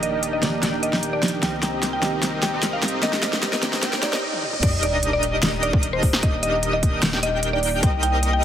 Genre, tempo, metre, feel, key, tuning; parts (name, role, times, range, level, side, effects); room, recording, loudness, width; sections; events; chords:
future bass; 150 BPM; 4/4; half-time; Eb major; A4 = 440 Hz
mallet-like synth pluck; melody; 0.0-8.4 s; C5 to G5; -26 LUFS; equal; chorus, sidechain pumping
soft round pluck; accompaniment; 0.0-4.2 s; Eb3 to D5; -31 LUFS; right 3 dB; chorus, sidechain pumping
airy breathy pad; sustained chords; 0.0-8.4 s; C3 to G4; -35 LUFS; equal; chorus, sidechain pumping
big bright polysynth; riff; 0.0-8.4 s; C4 to G5; -27 LUFS; equal; ensemble chorus, sidechain pumping
saturated sub bass; bass; 0.0-8.4 s; Eb1 to C2; -29 LUFS; equal; sidechain pumping
pop drum kit; drums; 0.0-8.3 s; crash cymbal, hi-hat, snare drum, toms; -24 LUFS; equal; small room reverb
riser, swell and sub drop; sound effects; 1.1-6.2 s; -32 LUFS; equal
airy dreamy lead; arpeggios; 4.6-8.4 s; Eb5 to G5; -29 LUFS; equal; chorus, sidechain pumping
electronic kick drum; drums; 4.6-7.9 s; -20 LUFS; equal; small room reverb
light reverb, digital ambience; heavily compressed radio sound, multiband compression, high-pass filter; -19 LUFS; side -10 dB against mid
0.0-4.6 A section; 4.6-8.4 B section
build-up 0.0-4.6; drum fill 0.0-4.2, 4.3; filter sweep on analog polysynth 0.0-4.6; filter sweep 0.0-4.6; swell 3.8-4.6; stop 4.2-4.6; drop 4.6-8.4; impact 4.6-6.2
0.0 Ebmaj7; 1.4 Cm7; 4.4 N.C.; 4.6 Ebmaj7; 7.8 Cm7